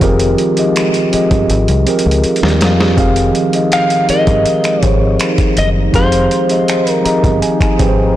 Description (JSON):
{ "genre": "contemporary R&B", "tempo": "81 BPM", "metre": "4/4", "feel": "straight", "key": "F minor", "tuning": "A4 = 444 Hz", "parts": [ { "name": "mellow tine electric piano", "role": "accompaniment", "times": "0.0-8.2 s", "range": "F3 to Bb5", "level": "-14 LUFS", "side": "right 1 dB", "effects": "slow stereo tremolo" }, { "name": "chorused pulse-width pad", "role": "sustained chords", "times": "0.0-8.2 s", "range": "Eb3 to F4", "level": "-22 LUFS", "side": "left 2 dB", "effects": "none" }, { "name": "deep dub fingered electric bass", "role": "bass", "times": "0.0-8.1 s", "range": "F1 to F2", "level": "-15 LUFS", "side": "equal", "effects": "none" }, { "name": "dusty soul sampler-style drum kit", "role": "drums", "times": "0.0-8.0 s", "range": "finger snaps, hi-hat, kick drum, snare drum", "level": "-17 LUFS", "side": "equal", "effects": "soft clipping on snare" }, { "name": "direct-recorded clean electric guitar", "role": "melody", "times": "3.7-7.4 s", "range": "C5 to F5", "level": "-16 LUFS", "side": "left 1 dB", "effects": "ping-pong delay" } ], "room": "light reverb", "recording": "blown-out, overdriven recording, overdrive", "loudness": "-10 LUFS", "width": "side -13 dB against mid", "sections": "0.0-8.2 A section", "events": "drum fill 1.5-3.0; tine electric piano fill 6.7-8.2", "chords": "0.0 Fm7" }